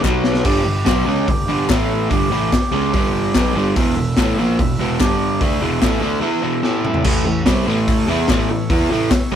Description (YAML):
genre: garage rock duo or trio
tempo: 145 BPM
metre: 4/4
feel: straight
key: A mixolydian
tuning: A4 = 440 Hz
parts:
  - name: combo organ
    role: sustained chords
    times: 0.0-9.4 s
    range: B3 to A5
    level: -27 LUFS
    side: right 3 dB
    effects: none
  - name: crunchy overdriven guitar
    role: riff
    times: 0.0-9.4 s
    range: E2 to E4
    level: -18 LUFS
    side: right 1 dB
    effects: none
  - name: fuzz picked electric bass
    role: bass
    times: 0.0-9.4 s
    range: E1 to E2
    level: -25 LUFS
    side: equal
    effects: overdrive
  - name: raw garage drum kit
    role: drums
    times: 0.0-9.2 s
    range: crash cymbal, hi-hat, kick drum, snare drum, toms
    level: -19 LUFS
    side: left 1 dB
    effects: none
  - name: group handclap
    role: percussion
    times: 0.0-9.2 s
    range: none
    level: -30 LUFS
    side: left 5 dB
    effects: none
room: moderate studio reverb, RT60 0.7 s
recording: band playing live in one room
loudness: -15 LUFS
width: side -9 dB against mid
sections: 0.0-7.1 A section; 7.1-9.4 B section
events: drum fill 0.0-0.5, 6.6-7.1; transistor combo organ fill 0.0-0.5, 2.9-3.8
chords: 0.0 B5; 0.5 G5; 1.7 A5; 2.1 G5; 3.8 E5; 5.0 G5; 5.4 E5; 6.6 A5; 7.1 A